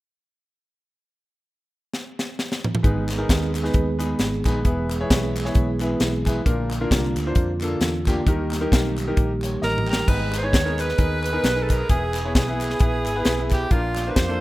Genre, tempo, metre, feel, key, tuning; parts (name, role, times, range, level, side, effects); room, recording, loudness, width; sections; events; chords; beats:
uptempo gospel; 132 BPM; 4/4; swing 57% on 8ths; G# harmonic minor; A4 = 440 Hz
tight funk drum kit; drums; 1.9-14.3 s; crash cymbal, hi-hat, kick drum, snare drum, toms; -22 LUFS; equal
bright grand piano; accompaniment; 2.8-14.4 s; G#2 to G5; -27 LUFS; left 1 dB
percussive tonewheel organ; sustained chords; 2.8-14.4 s; D3 to D6; -29 LUFS; right 2 dB; slow rotary speaker, chorus vibrato
vintage muted fingered electric bass; bass; 2.8-14.4 s; E1 to E#2; -26 LUFS; equal
group handclap; percussion; 3.1-14.1 s; -39 LUFS; left 1 dB
edgy alto saxophone; melody; 9.6-14.4 s; E#4 to C#5; -26 LUFS; right 2 dB; slapback echo
warm saxophone section; melody; 9.6-14.4 s; A#3 to C#5; -33 LUFS; left 1 dB
light reverb; rough home demo mix; -19 LUFS; side -18 dB against mid
1.0-2.8 A section; 2.8-10.1 B section; 10.1-14.4 C section
drum fill 1.9-2.8, 9.6-10.1
1.0 N.C.; 2.8 G#m; 4.7 E; 6.5 A#; 8.3 D#; 10.1 G#m; 11.9 E; 13.7 A#
| 1.03 1.48 1.94 2.39 | 2.84 3.29 3.75 4.20 | 4.65 5.10 5.55 6.01 | 6.46 6.91 7.37 7.82 | 8.27 8.72 9.18 9.63 | 10.08 10.54 10.99 11.44 | 11.90 12.35 12.80 13.26 | 13.71 14.16